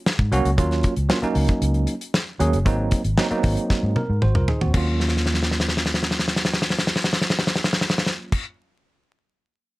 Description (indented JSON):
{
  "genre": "funk",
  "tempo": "115 BPM",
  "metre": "4/4",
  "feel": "straight",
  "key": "Eb dorian",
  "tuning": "A4 = 440 Hz",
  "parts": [
    { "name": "damped 70s drum kit", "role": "drums", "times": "0.1-8.4 s", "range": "crash cymbal, hi-hat, kick drum, snare drum, toms", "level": "-21 LUFS", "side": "equal", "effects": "none" },
    { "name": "vintage muted fingered electric bass", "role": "bass", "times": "0.2-8.4 s", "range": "Gb1 to Ab2", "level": "-22 LUFS", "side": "equal", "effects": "none" },
    { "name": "bell-like tine electric piano", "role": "stabs", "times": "0.3-8.4 s", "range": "Gb3 to C5", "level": "-26 LUFS", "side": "right 2 dB", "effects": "fast stereo tremolo, plate reverb" }
  ],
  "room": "light reverb",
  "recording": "vinyl crackle",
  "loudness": "-19 LUFS",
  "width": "side -19 dB against mid",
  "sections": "0.0-4.7 A section; 4.7-8.9 B section",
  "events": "drum fill 3.7-4.7, 5.0-8.3; tine electric piano fill 3.7-4.7",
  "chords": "0.0 Ab9; 4.7 Ebm9"
}